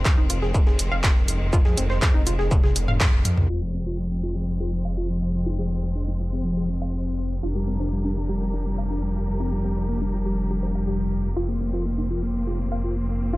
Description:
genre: melodic techno.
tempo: 122 BPM.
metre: 4/4.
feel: straight.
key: F dorian.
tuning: A4 = 440 Hz.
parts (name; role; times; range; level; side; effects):
clear studio string section; sustained chords; 0.0-13.4 s; Eb3 to Bb4; -34 LUFS; equal; sidechain pumping.
swelling detuned saw bass; bass; 0.0-13.4 s; Eb1 to F2; -26 LUFS; equal; tube saturation, sidechain pumping.
dusty soul sampler-style drum kit; drums; 0.1-3.4 s; hi-hat, shaker, snare drum; -39 LUFS; right 1 dB; none.
electronic kick drum; drums; 0.1-3.1 s; none; -19 LUFS; equal; distortion, overdrive.
techno drum kit; drums; 0.1-3.5 s; handclaps, hi-hat, toms; -24 LUFS; equal; overdrive.
tight sequenced synth; arpeggios; 0.2-13.4 s; C4 to F5; -32 LUFS; equal; chorus, cassette tape, sidechain pumping, analog delay.
soft octave-layered synth lead; melody; 3.5-13.4 s; F3 to F4; -28 LUFS; left 1 dB; chorus, sidechain pumping, analog delay.
room: little or no reverb.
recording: dry, gritty hardware recording, low-pass filter.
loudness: -21 LUFS.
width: side -19 dB against mid.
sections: 0.0-3.5 A section; 3.5-13.4 B section.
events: drum fill 2.5-3.5; band accent 3.0; filter sweep on synth arpeggio sound 3.5-13.4; filter sweep on soft synth lead 3.5-13.4; filter sweep 3.5-13.4.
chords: 0.0 Ab; 3.5 Fm; 7.4 Gm/F; 11.4 Bbsus2/F.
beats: 0.05 0.55 1.04 | 1.53 2.02 2.51 3.00 | 3.50 3.99 4.48 4.97 | 5.46 5.96 6.45 6.94 | 7.43 7.92 8.41 8.91 | 9.40 9.89 10.38 10.87 | 11.37 11.86 12.35 12.84 | 13.33.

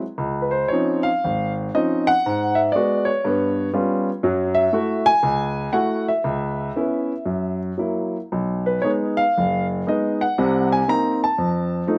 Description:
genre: solo jazz.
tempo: 119 BPM.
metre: 4/4.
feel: swing 66% on 8ths, rubato.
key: unclear.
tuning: A4 = 440 Hz.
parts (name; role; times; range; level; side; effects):
warm grand piano; solo; 0.2-12.0 s; Gb1 to Bb5; -21 LUFS; equal; slapback echo.
room: little or no reverb.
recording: recorded outdoors, with no room sound.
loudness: -21 LUFS.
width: mono.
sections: 0.2-12.0 A section.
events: none.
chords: 0.2 Dbmaj9; 2.2 Abm7b5; 3.2 G7#11; 4.2 Gbm7; 6.2 Dbm7; 7.3 Gb7; 8.3 Cb6; 10.4 Cm7b5; 11.4 F7.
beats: | 0.17 0.70 1.22 1.73 | 2.24 2.74 3.23 3.73 | 4.23 4.74 5.24 5.74 | 6.25 6.75 7.26 7.79 | 8.32 8.85 9.36 9.87 | 10.37 10.87 11.37 11.87.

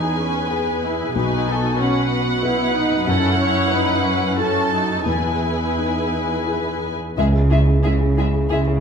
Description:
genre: cinematic.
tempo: 84-94 BPM.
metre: 3/4.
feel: rubato.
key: E major.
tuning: A4 = 439 Hz.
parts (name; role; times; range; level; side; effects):
muted studio violin section; second line; 0.0-8.6 s; G#4 to A5; -23 LUFS; left 2 dB; none.
dark grand piano; accompaniment; 0.0-8.8 s; B1 to B4; -22 LUFS; left 2 dB; none.
muted symphonic viola section; accompaniment; 0.0-8.6 s; G#3 to G#4; -24 LUFS; right 3 dB; none.
muted symphonic cello section; bass; 0.0-8.8 s; E2 to C#3; -25 LUFS; right 2 dB; none.
muted symphonic violin section; melody; 7.2-8.6 s; E5; -27 LUFS; left 4 dB; none.
muted symphonic double bass section; bass; 7.2-8.8 s; C#2; -20 LUFS; right 2 dB; none.
room: wet recital hall reverb, RT60 1.7 s.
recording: recorded in a church or concert hall.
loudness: -17 LUFS.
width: side -6 dB against mid.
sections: 0.0-7.2 A section; 7.2-8.8 B section.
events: none.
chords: 0.0 Emaj7; 1.1 Bsus2; 3.1 F#m7; 5.1 Emaj7; 7.2 C#m.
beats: 0.49 | 1.14 1.78 2.43 | 3.07 3.71 4.37 | 5.07 5.77 6.47 | 7.17 7.84 8.51.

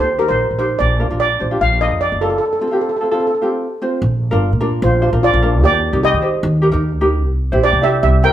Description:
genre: calypso.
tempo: 149 BPM.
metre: 4/4.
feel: straight.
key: Bb major.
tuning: A4 = 438 Hz.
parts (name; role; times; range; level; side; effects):
steel pan; melody; 0.0-8.3 s; F4 to G5; -16 LUFS; right 1 dB; none.
ukulele; accompaniment; 0.0-8.3 s; C4 to D5; -20 LUFS; equal; none.
upright bass; bass; 0.0-8.3 s; Gb1 to Eb3; -17 LUFS; equal; none.
room: moderate large studio reverb, RT60 0.9 s.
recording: band playing live in one room.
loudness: -13 LUFS.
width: side -11 dB against mid.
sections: 0.0-4.0 A section; 4.0-8.3 B section.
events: none.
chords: 0.0 Eb; 0.8 Bb; 2.4 F; 4.0 Bb; 5.6 Eb6; 7.2 C7.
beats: 0.39 | 0.80 1.20 1.61 2.01 | 2.41 2.82 3.22 3.62 | 4.02 4.43 4.83 5.23 | 5.63 6.03 6.43 6.83 | 7.23 7.63 8.03.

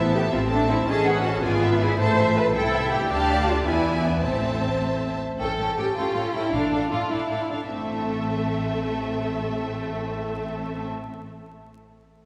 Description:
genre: quick classical-period movement for string orchestra.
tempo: 96-109 BPM (dotted quarters).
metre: 6/8.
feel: straight.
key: A minor.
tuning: A4 = 440 Hz.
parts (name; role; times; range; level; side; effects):
warm symphonic violin section; melody; 0.0-10.9 s; E5 to A5; -34 LUFS; equal; none.
warm symphonic violin section; second line; 0.0-10.9 s; A3 to A5; -30 LUFS; equal; none.
clear symphonic viola section; accompaniment; 0.0-10.9 s; A3 to A4; -32 LUFS; equal; none.
warm symphonic cello section; bass; 0.0-10.9 s; A2 to C5; -29 LUFS; equal; none.
warm symphonic double bass section; bass; 0.0-10.9 s; G#1 to E2; -31 LUFS; equal; none.
room: wet church reverb, RT60 3.0 s.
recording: recorded in a church or concert hall, vinyl crackle.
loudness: -24 LUFS.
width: mono.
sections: 0.0-5.4 A section; 5.4-7.7 B section; 7.7-10.1 C section.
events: slowing down 4.8-7.7.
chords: 0.0 Am; 0.9 B7/A; 1.4 E7/G#; 2.0 Am; 2.5 C; 3.1 Dm; 3.7 E7; 4.2 Am; 5.4 A7; 6.5 Dm/A; 7.7 Am.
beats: 0.31 | 0.87 1.43 | 1.99 2.54 | 3.10 3.67 | 4.24 4.82 | 5.40 5.96 | 6.53 7.11 | 7.72 8.32 | 8.92 9.52.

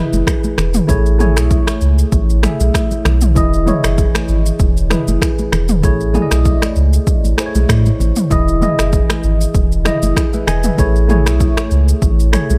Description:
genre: afrobeats.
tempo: 97 BPM.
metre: 4/4.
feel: swing 55% on 16ths.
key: E major.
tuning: A4 = 440 Hz.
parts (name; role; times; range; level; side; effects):
mellow tine electric piano; accompaniment; 0.0-12.6 s; E3 to G#5; -21 LUFS; equal; phaser.
sub bass with octave; bass; 0.1-12.6 s; E1 to A2; -17 LUFS; equal; none.
deep house drum kit; drums; 0.1-12.6 s; finger snaps, kick drum, rim click, shaker, toms; -18 LUFS; equal; overdrive.
congas; percussion; 0.1-12.6 s; none; -27 LUFS; equal; none.
room: digital ambience.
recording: none.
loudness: -14 LUFS.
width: mono.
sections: 0.0-12.6 A section.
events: none.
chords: 0.0 Emaj7; 0.9 Amaj7; 3.4 Emaj7; 5.8 Amaj7; 8.3 Emaj7; 10.8 Amaj7.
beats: 0.27 | 0.89 1.51 2.12 2.74 | 3.36 3.98 4.60 5.22 | 5.84 6.46 7.07 7.69 | 8.31 8.93 9.55 10.17 | 10.79 11.40 12.02.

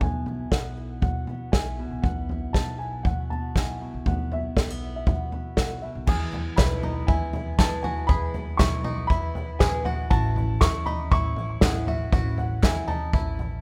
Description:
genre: indie folk with a building arrangement.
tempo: 119 BPM.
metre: 4/4.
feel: straight.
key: E major.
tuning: A4 = 438 Hz.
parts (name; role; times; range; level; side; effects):
dark upright piano; melody; 0.0-13.6 s; E5 to C#6; -35 LUFS; equal; digital delay.
fingerpicked steel-string acoustic guitar; accompaniment; 0.0-6.1 s; B2 to F#4; -39 LUFS; equal; none.
upright bass; bass; 0.0-13.6 s; A1 to B2; -34 LUFS; equal; none.
unplugged drum kit; drums; 0.0-13.5 s; crash cymbal, kick drum, snare drum, toms; -26 LUFS; equal; none.
picked twelve-string acoustic guitar; accompaniment; 6.1-13.6 s; E2 to E4; -38 LUFS; equal; none.
bluegrass banjo; arpeggios; 6.1-13.6 s; D#4 to G#4; -38 LUFS; equal; none.
group handclap; percussion; 6.6-12.8 s; none; -40 LUFS; equal; none.
tambourine; percussion; 6.6-12.8 s; none; -46 LUFS; equal; none.
room: small room reverb.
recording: rough home demo mix.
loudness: -25 LUFS.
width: mono.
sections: 0.0-6.1 A section; 6.1-13.6 B section.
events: none.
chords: 0.0 Bsus4; 6.1 E; 10.1 A.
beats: | 0.01 0.52 1.03 1.53 | 2.04 2.55 3.05 3.56 | 4.06 4.57 5.07 5.58 | 6.08 6.59 7.09 7.59 | 8.10 8.60 9.10 9.61 | 10.11 10.61 11.12 11.62 | 12.12 12.63 13.14.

